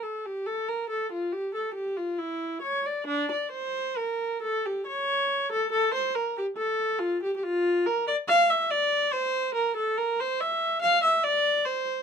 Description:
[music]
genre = classical, baroque-style suite movement for unaccompanied viola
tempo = 70 BPM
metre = 3/4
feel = rubato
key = unclear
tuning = A4 = 439 Hz
[part]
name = warm viola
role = solo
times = 0.0-12.0 s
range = D4 to F5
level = -24 LUFS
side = equal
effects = none
[sound]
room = little or no reverb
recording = close, detailed microphones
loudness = -24 LUFS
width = side -7 dB against mid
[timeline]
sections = 0.0-12.0 A section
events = none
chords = none

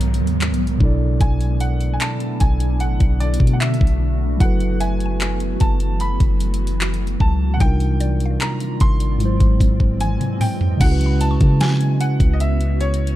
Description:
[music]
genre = contemporary R&B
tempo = 75 BPM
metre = 4/4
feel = straight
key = unclear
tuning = A4 = 440 Hz
[part]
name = clear grand piano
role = melody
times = 0.0-13.2 s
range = C#5 to C6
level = -29 LUFS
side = right 1 dB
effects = tape echo
[part]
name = mellow tine electric piano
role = accompaniment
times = 0.0-13.2 s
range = G#2 to D5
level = -23 LUFS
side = right 2 dB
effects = none
[part]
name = granular cloud pad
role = sustained chords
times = 0.0-13.2 s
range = C#3 to D#5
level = -27 LUFS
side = equal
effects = built-in reverb, phaser
[part]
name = soft 808-style bass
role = bass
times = 0.0-13.2 s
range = F#1 to C#3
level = -20 LUFS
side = equal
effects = none
[part]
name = smooth R&B drum kit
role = drums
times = 0.0-13.2 s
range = crash cymbal, handclaps, hi-hat, kick drum, snare drum, toms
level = -18 LUFS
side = equal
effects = none
[part]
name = downlifter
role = sound effects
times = 0.0-4.4 s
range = none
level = -41 LUFS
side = equal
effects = none
[part]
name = mallet-like synth pluck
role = texture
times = 4.8-12.8 s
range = D5 to C#6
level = -38 LUFS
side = equal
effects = chorus, phaser, tape echo
[sound]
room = little or no reverb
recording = dark, warm production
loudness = -16 LUFS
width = side -14 dB against mid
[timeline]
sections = 0.0-10.8 A section; 10.8-13.2 B section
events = drum fill 10.0-10.8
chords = 0.0 G#m11; 0.8 Bm7; 4.4 F#m11; 7.6 Cm11; 9.2 G#7b13; 10.8 C#m11

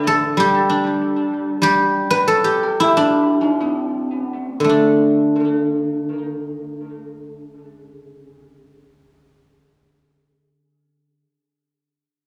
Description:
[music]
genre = chinese traditional, Chinese solo plucked strings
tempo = 57-97 BPM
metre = 2/4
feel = rubato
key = D zhi mode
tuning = A4 = 440 Hz
[part]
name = guzheng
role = solo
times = 0.0-11.2 s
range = D3 to D6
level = -18 LUFS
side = equal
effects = tape echo
[sound]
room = moderate concert hall reverb, RT60 1.9 s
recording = small room ambience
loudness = -18 LUFS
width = mono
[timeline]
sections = 0.0-4.7 A section; 4.7-8.7 B section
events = slowing down 1.6-4.7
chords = none

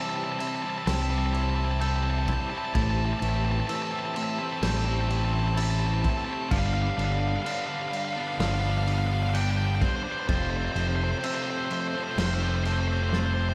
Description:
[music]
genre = post-rock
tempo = 64 BPM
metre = 4/4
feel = straight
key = C major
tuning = A4 = 440 Hz
[part]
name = dark smooth lead guitar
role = melody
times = 0.0-13.5 s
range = C5 to A5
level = -34 LUFS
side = equal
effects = overdrive, digital delay
[part]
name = sweeping resonant pad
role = sustained chords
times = 0.0-13.5 s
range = G4 to D6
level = -43 LUFS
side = equal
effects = chorus
[part]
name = glockenspiel with soft plastic mallets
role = arpeggios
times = 0.0-13.5 s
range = E6 to A6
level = -44 LUFS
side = equal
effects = digital delay
[part]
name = twangy electric guitar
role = arpeggios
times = 0.0-13.5 s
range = F2 to A4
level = -39 LUFS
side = equal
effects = digital delay
[part]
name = tight distorted guitar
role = riff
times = 0.0-13.5 s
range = F2 to E4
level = -36 LUFS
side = equal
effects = distortion
[part]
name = loose indie drum kit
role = drums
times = 0.4-13.4 s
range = crash cymbal, kick drum, snare drum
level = -36 LUFS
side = equal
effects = none
[part]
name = overdriven fingered electric bass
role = bass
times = 0.9-13.5 s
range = F1 to C2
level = -29 LUFS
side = equal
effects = none
[sound]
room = small room ambience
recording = none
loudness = -27 LUFS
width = mono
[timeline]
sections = 0.0-13.5 A section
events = drum fill 13.1-13.5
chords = 0.0 C6; 2.8 Am7; 6.5 G7; 10.3 Fmaj7

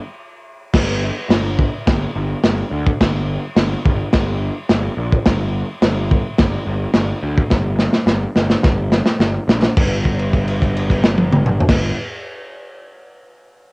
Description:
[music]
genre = garage rock duo or trio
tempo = 106 BPM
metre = 4/4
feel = straight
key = G minor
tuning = A4 = 440 Hz
[part]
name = fuzz picked electric bass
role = bass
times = 0.7-11.9 s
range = G1 to D2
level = -20 LUFS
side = equal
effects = overdrive
[part]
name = crunchy breakbeat drum kit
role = drums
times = 0.7-11.8 s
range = crash cymbal, kick drum, snare drum, toms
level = -16 LUFS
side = equal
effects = vintage 12-bit sampler grit, cassette tape
[sound]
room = light reverb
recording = home recording on cassette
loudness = -14 LUFS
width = side -38 dB against mid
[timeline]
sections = 0.7-9.8 A section; 9.8-12.0 B section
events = break 0.2-0.7; drum fill 7.5-9.8; held note 9.8-11.7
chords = none

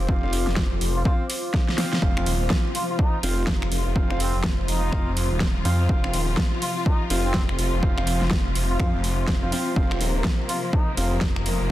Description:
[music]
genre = bass house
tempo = 124 BPM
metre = 4/4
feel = swing 61% on 16ths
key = unclear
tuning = A4 = 440 Hz
[part]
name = phased detuned saw bass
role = bass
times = 0.0-11.7 s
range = Eb1 to F2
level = -25 LUFS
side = equal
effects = phaser, tube saturation, sidechain pumping
[part]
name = warbly tape-like pad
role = texture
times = 0.0-11.7 s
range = F4 to Eb6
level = -33 LUFS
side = left 1 dB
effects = chorus, built-in reverb, sidechain pumping
[part]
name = clear baby grand piano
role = stabs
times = 0.1-11.1 s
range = C4 to F5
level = -32 LUFS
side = equal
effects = sidechain pumping, tape echo
[part]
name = electronic kick drum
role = drums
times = 0.1-11.3 s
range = none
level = -23 LUFS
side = equal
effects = none
[part]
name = big-room dance drum kit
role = drums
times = 0.3-11.6 s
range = finger snaps, hi-hat, snare drum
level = -28 LUFS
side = equal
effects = overdrive
[part]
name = trumpet with plunger mute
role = melody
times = 1.0-10.9 s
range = C4 to F4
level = -34 LUFS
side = equal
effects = tape echo
[part]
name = rich studio string section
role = sustained chords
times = 2.0-11.7 s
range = C3 to F4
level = -32 LUFS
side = left 2 dB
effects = sidechain pumping
[sound]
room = light reverb, studio reverb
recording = dense, heavily limited modern master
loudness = -20 LUFS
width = side -14 dB against mid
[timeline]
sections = 0.0-11.7 A section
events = drum fill 1.5-2.0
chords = 0.0 F5

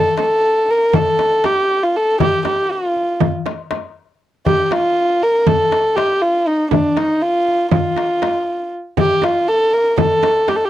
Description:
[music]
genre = Turkish makam ensemble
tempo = 239 BPM (eighths)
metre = 9/8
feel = straight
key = unclear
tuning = A4 = 440 Hz
[part]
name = dark kamancheh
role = melody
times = 0.0-10.7 s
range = D4 to Bb4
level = -14 LUFS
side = equal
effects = none
[part]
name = darbuka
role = percussion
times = 0.2-10.6 s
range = none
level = -21 LUFS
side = left 7 dB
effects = none
[part]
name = frame drum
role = percussion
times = 0.2-10.6 s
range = none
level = -22 LUFS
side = right 9 dB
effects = none
[sound]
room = little or no reverb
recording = dry, close 1970s-style studio recording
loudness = -14 LUFS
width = side -13 dB against mid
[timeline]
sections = 0.0-10.7 A section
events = none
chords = none

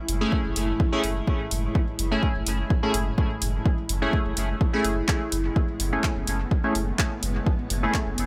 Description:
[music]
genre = dub techno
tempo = 126 BPM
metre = 4/4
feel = straight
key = F# minor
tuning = A4 = 439 Hz
[part]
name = granular cloud pad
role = sustained chords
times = 0.0-8.3 s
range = A2 to E4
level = -35 LUFS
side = equal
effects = built-in reverb, sidechain pumping
[part]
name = soft dub sub bass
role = bass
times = 0.1-8.3 s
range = F#1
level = -31 LUFS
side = equal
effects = sidechain pumping
[part]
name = punchy analog drum machine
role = drums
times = 0.1-8.3 s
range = handclaps, hi-hat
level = -32 LUFS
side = equal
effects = overdrive, studio reverb
[part]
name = resonant sweep polysynth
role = stabs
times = 0.2-8.0 s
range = A3 to G#4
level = -30 LUFS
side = equal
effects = chorus, phaser, vintage 12-bit sampler grit, sidechain pumping, dub echo
[part]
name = electronic kick drum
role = drums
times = 0.3-8.0 s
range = none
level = -26 LUFS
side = equal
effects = studio reverb
[sound]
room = light reverb, digital ambience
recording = none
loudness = -25 LUFS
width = mono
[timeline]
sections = 0.0-8.3 A section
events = none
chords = 0.0 F#m9

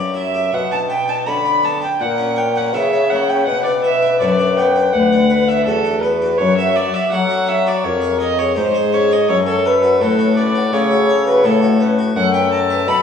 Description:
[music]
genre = classical, baroque-style sonata movement with continuo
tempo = 82 BPM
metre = 4/4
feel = rubato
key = B minor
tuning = A4 = 442 Hz
[part]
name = dark violin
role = second line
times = 0.0-13.0 s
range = A4 to B5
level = -17 LUFS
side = right 1 dB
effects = none
[part]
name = harpsichord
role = accompaniment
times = 0.0-13.0 s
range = D2 to D#5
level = -20 LUFS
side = left 3 dB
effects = none
[part]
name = clear bassoon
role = bass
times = 0.0-13.0 s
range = D2 to F#3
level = -20 LUFS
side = left 1 dB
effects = none
[part]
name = mellow baroque flute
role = melody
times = 2.0-13.0 s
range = F#4 to C#5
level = -21 LUFS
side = left 6 dB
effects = none
[sound]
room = wet recital hall reverb, RT60 1.5 s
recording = heard from further back in the room, small room ambience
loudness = -13 LUFS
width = side -7 dB against mid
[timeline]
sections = 0.5-13.0 A section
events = none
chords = 0.0 Em; 0.5 Bm; 2.0 A#dim7; 3.5 Bm; 6.4 F#m; 7.8 C#/E#; 9.3 F#m; 12.2 B7/F#

